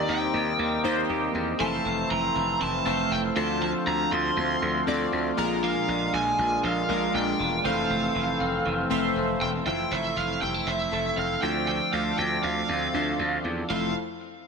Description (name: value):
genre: pop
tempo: 119 BPM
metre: 4/4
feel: straight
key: F major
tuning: A4 = 440 Hz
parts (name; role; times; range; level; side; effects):
- lead guitar through a small cranked amp; melody; 0.0-13.9 s; Eb5 to C6; -28 LUFS; right 2 dB; overdrive
- chorused retro synth keys; accompaniment; 0.0-13.9 s; F2 to F5; -29 LUFS; left 1 dB; phaser
- mellow accordion; sustained chords; 0.0-13.9 s; C3 to F4; -33 LUFS; left 4 dB; none
- clean electric guitar; riff; 0.0-13.9 s; Eb3 to G4; -33 LUFS; right 8 dB; ensemble chorus
- mellow synth brass; stabs; 0.0-9.6, 13.7-13.9 s; F3 to F5; -36 LUFS; left 4 dB; chorus
- gritty slap bass; bass; 0.1-13.9 s; E1 to E2; -31 LUFS; equal; overdrive
room: moderate lush hall reverb, RT60 2.3 s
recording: none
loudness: -23 LUFS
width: side -5 dB against mid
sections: 0.0-9.7 A section; 9.7-13.7 B section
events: none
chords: 0.0 Eb6; 1.6 Fmaj7; 3.4 Dm7; 5.4 Bb7; 7.6 Fmaj7; 11.4 Dm7; 13.7 Fmaj7